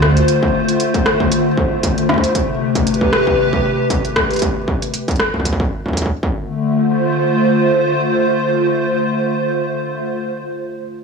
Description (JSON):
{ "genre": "IDM", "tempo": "116 BPM", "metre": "4/4", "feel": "swing 56% on 16ths", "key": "D dorian", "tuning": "A4 = 440 Hz", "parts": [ { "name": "hollow soft pad", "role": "sustained chords", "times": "0.0-10.4 s", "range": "C3 to C5", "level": "-16 LUFS", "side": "equal", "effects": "ensemble chorus, vintage 12-bit sampler grit" }, { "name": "electronic kick drum", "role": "drums", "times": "0.0-6.3 s", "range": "none", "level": "-19 LUFS", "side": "equal", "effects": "distortion, small room ambience" }, { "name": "industrial drum kit", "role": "drums", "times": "0.0-6.1 s", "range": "hi-hat, rim click", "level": "-21 LUFS", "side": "equal", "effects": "small room ambience, soft clipping on snare, tape echo" } ], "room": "wet echo chamber reverb, RT60 1.6 s", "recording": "blown-out, overdriven recording, overdrive, small room ambience", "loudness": "-14 LUFS", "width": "side -5 dB against mid", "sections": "0.0-6.5 A section; 6.5-10.6 B section", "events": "none", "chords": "0.0 Dm7; 2.4 Am7/C; 6.2 D5; 6.5 Dm7", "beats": "| 0.28 0.80 1.32 1.83 | 2.35 2.87 3.38 3.90 | 4.42 4.94 5.45 5.97 | 6.49 7.01 7.52 8.04 | 8.56 9.07 9.59 10.11" }